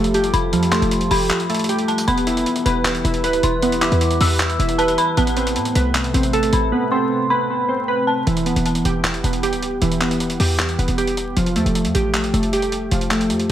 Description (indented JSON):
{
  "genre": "hip hop, trap",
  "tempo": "155 BPM",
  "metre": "4/4",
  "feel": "half-time",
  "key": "E phrygian",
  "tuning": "A4 = 440 Hz",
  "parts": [
    { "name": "dark analog pad", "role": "sustained chords", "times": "0.0-8.2 s", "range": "C3 to B4", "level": "-26 LUFS", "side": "equal", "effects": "chorus" },
    { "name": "glassy digital keys", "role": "arpeggios", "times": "0.0-13.5 s", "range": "E3 to B4", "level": "-20 LUFS", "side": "right 1 dB", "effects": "chorus, low-pass filter, ping-pong delay" },
    { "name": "short 808-style bass", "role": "bass", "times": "0.0-13.5 s", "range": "D1 to A2", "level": "-22 LUFS", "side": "equal", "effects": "none" },
    { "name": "breakbeat sampler-style drum kit", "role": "drums", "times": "0.0-13.5 s", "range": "handclaps, hi-hat", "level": "-24 LUFS", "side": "right 1 dB", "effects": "none" },
    { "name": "dark detuned synth bell", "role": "second line", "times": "0.3-8.3 s", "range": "A5 to E6", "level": "-24 LUFS", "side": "left 2 dB", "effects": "chorus, tremolo, phaser, ping-pong delay" }
  ],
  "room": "light reverb",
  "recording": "vinyl crackle",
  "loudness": "-16 LUFS",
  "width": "side -11 dB against mid",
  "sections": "0.0-8.3 A section; 8.3-13.5 B section",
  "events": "break 1.3-2.1; silent gap 6.7-8.3",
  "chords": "0.0 Fadd9; 2.1 Em; 5.2 Amadd9; 8.3 Em; 11.4 Fadd9",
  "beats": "0.14 | 0.53 0.92 1.30 1.69 | 2.08 2.46 2.85 3.24 | 3.62 4.01 4.40 4.79 | 5.17 5.56 5.95 6.33 | 6.72 7.11 7.50 7.88 | 8.27 8.66 9.04 9.43 | 9.82 10.21 10.59 10.98 | 11.37 11.75 12.14 12.53 | 12.91 13.30"
}